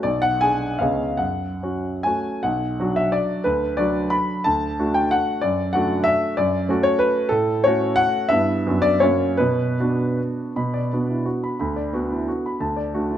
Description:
classical, romantic triple-time dance for piano with dotted rhythms; 135-202 BPM; 3/4; rubato; B minor; A4 = 440 Hz
warm grand piano; solo; 0.0-13.2 s; B1 to B5; -19 LUFS; equal
moderate recital hall reverb, RT60 1.5 s; close, detailed microphones; -19 LUFS; side -10 dB against mid
0.0-2.4 A section; 2.4-10.5 B section; 10.5-13.2 B section
0.1 G#dim/B; 0.8 C#7; 1.2 F#m; 2.4 Bm; 3.4 Bm/D; 4.5 D; 5.4 D/F#; 6.4 F#m; 7.3 F#m/A; 8.3 Em/G; 8.7 Bm/F#; 9.0 F#; 9.4 Bm; 11.6 Bm/D; 12.6 D

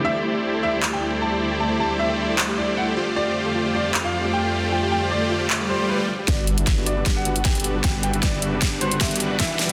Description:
future bass; 154 BPM; 4/4; half-time; G major; A4 = 443 Hz
clear baby grand piano; melody; 0.0-9.6 s; B4 to A5; -30 LUFS; equal; sidechain pumping, low-pass filter, digital delay
felt-muted upright piano; accompaniment; 0.0, 6.3-9.7 s; D3 to G4; -33 LUFS; equal; sidechain pumping, digital delay
rich studio string section; sustained chords; 0.0-9.7 s; D2 to B4; -32 LUFS; equal; sidechain pumping
soft round pluck; arpeggios; 0.0-6.2 s; E4 to A4; -34 LUFS; equal; chorus, sidechain pumping, digital delay
supersaw chords; riff; 0.0-9.7 s; G3 to F#5; -27 LUFS; equal; sidechain pumping, low-pass filter, digital delay
dubstep drum kit; drums; 0.8-9.7 s; handclaps, hi-hat, snare drum; -27 LUFS; equal; overdrive, high-pass filter on snare, high-pass filter on hats
swell and riser; sound effects; 5.6-9.7 s; -33 LUFS; equal
warm 808-style bass; bass; 6.3-9.7 s; E1 to G1; -30 LUFS; equal; sidechain pumping
electronic kick drum; drums; 6.3-9.5 s; -24 LUFS; equal; overdrive
wet digital room reverb, RT60 1.2 s, digital ambience; dense, heavily limited modern master, high-pass filter; -22 LUFS; mono
0.0-6.3 A section; 6.3-9.7 B section
swell 5.6-6.3; build-up 6.3-9.7; drum fill 6.3-9.7; filter sweep on supersaw synth 6.3-9.7; filter sweep on grand piano 6.3-9.7; filter sweep 6.3-9.7
0.0 D9sus4; 3.0 F69; 6.3 Gmaj7

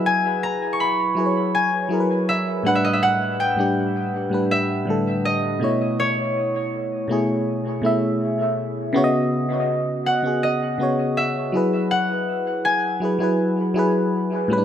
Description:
R&B; 81 BPM; 4/4; straight; A4 = 440 Hz
concert harp; melody; 0.0-14.5 s; C#5 to C#6; -23 LUFS; equal; dub echo
FM electric piano; accompaniment; 0.0-14.6 s; A2 to E5; -21 LUFS; equal; chorus, dub echo
moderate echo chamber reverb, RT60 1.9 s, studio ambience; echo-heavy mix; -19 LUFS; side -9 dB against mid
0.0-8.9 A section; 8.9-14.6 B section
0.0 F#9sus4; 2.6 A9sus4; 5.6 B9sus4; 8.9 C#9sus4; 11.5 F#9sus4

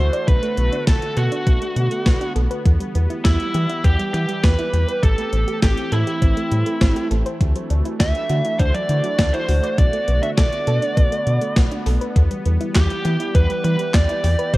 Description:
synth-pop; 101 BPM; 4/4; straight; A4 = 439 Hz
biting lead guitar; melody; 0.0-14.6 s; E4 to E5; -23 LUFS; right 1 dB; overdrive, tape echo
sweeping resonant pad; sustained chords; 0.0-14.6 s; D3 to G4; -28 LUFS; right 1 dB; chorus
soft round pluck; arpeggios; 0.0-14.6 s; D3 to D5; -30 LUFS; right 1 dB; chorus, tape echo
round analog bass; bass; 0.0-14.6 s; A1 to E3; -19 LUFS; equal
gated 80s digital drum machine; drums; 0.1-14.6 s; handclaps, hi-hat, kick drum, snare drum; -19 LUFS; equal; gated reverb, gated reverb snare
little or no reverb; echo-heavy mix; -16 LUFS; side -18 dB against mid
0.0-14.6 A section
0.3 Bm7; 2.7 Em; 5.0 Am7; 7.4 Dadd9; 9.8 Bm7; 12.2 Em

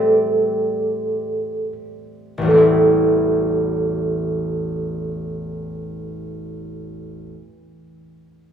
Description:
celtic folk, Celtic slow air; free time; A minor; A4 = 436 Hz
tine electric piano; melody; 0.0-7.4 s; A4; -18 LUFS; right 1 dB; medium tremolo
concert harp; accompaniment; 0.0-7.5 s; A1 to E4; -23 LUFS; equal
moderate concert hall reverb, RT60 1.7 s; -17 LUFS; side -8 dB against mid
0.0-2.5 A section; 2.5-8.0 B section
slowing down 0.0-2.5
0.0 Am7

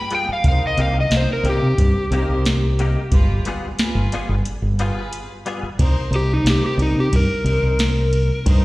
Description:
straight-eighth soul blues; 90 BPM; 4/4; swing 54% on 16ths; C minor; A4 = 440 Hz
overdriven slide guitar; melody; 0.0-8.4 s; Eb4 to B5; -22 LUFS; left 1 dB; slapback echo, analog delay
direct-recorded clean electric guitar; stabs; 0.1-5.7 s; C3 to Ab4; -27 LUFS; left 3 dB; ensemble chorus, slapback echo
soft vintage rhythm box; drums; 0.1-8.6 s; hi-hat, kick drum, ride cymbal, snare drum; -19 LUFS; equal
fingered electric bass; bass; 0.3-8.6 s; G1 to C3; -19 LUFS; equal
rich chamber string section; sustained chords; 0.5-8.6 s; Ab3 to C5; -31 LUFS; equal
little or no reverb; live gig heard through the venue's PA, recital hall reverb; -16 LUFS; side -19 dB against mid
0.0-5.8 A section; 5.8-8.6 B section
break 4.5-5.8; electric slide guitar solo 5.8-8.6
0.4 Cm7; 3.1 G7b9; 5.8 Cm7

